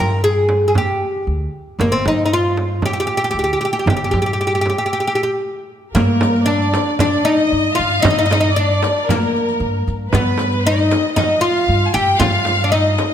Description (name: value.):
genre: Arabic maqam ensemble.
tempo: 115 BPM.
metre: 4/4.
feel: straight.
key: G maqam kurd, G maqam saba from 6.0 s.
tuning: A4 = 440 Hz.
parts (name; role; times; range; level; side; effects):
oud; melody; 0.0-13.1 s; Bb3 to Bb4; -17 LUFS; equal; none.
upright bass; bass; 0.0-13.0 s; G1 to G2; -20 LUFS; equal; none.
frame drum; percussion; 0.5-13.1 s; none; -22 LUFS; right 3 dB; none.
rich studio violin section; second line; 6.0-13.1 s; Bb4 to Ab5+50c; -20 LUFS; left 2 dB; none.
riq; percussion; 6.0-13.1 s; none; -30 LUFS; left 6 dB; none.
room: moderate concert hall reverb, RT60 1.8 s.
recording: none.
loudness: -14 LUFS.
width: side -9 dB against mid.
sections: 0.0-6.0 A section; 6.0-13.1 B section.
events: stop 4.9-6.0.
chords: none.